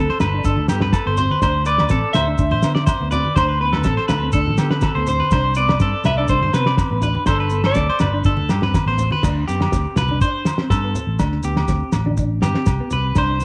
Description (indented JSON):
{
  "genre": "highlife guitar band",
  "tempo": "123 BPM",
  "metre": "4/4",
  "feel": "straight",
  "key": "unclear",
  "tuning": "A4 = 440 Hz",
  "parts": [
    { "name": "clean electric guitar", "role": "melody", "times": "0.0-8.1 s", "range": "A4 to E5", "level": "-24 LUFS", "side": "equal", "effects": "phaser" },
    { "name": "electric guitar at the edge of break-up", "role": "accompaniment", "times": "0.0-13.4 s", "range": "G3 to D4", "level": "-30 LUFS", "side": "equal", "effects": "ensemble chorus" },
    { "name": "clean electric guitar", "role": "arpeggios", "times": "0.0-13.4 s", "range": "G4 to D5", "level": "-26 LUFS", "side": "equal", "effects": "spring reverb, slapback echo" },
    { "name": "fingered electric bass", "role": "bass", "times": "0.0-13.4 s", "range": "G1 to D3", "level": "-24 LUFS", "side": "equal", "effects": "transformer saturation" },
    { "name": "cloth-damped thuddy drum kit", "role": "drums", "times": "0.1-13.3 s", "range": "crash cymbal, kick drum, snare drum", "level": "-24 LUFS", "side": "equal", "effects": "none" },
    { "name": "agogo bells", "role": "percussion", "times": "0.2-13.3 s", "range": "none", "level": "-34 LUFS", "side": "equal", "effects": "none" },
    { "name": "congas", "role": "percussion", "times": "0.2-13.0 s", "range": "none", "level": "-30 LUFS", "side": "equal", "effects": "none" },
    { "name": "shekere", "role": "percussion", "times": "0.2-13.4 s", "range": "none", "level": "-29 LUFS", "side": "equal", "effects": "none" }
  ],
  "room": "small room ambience",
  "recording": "none",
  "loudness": "-18 LUFS",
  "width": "mono",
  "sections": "0.0-9.2 A section; 9.2-13.4 B section",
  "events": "clean electric guitar solo 9.2-13.4",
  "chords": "0.0 Gsus2; 1.4 D7(no3); 7.3 Gsus2; 9.2 D7sus4",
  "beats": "0.45 0.94 | 1.42 1.91 2.40 2.88 | 3.37 3.86 4.35 4.83 | 5.32 5.81 6.30 6.79 | 7.28 7.77 8.26 8.75 | 9.24 9.73 10.22 10.71 | 11.20 11.70 12.19 12.68 | 13.17"
}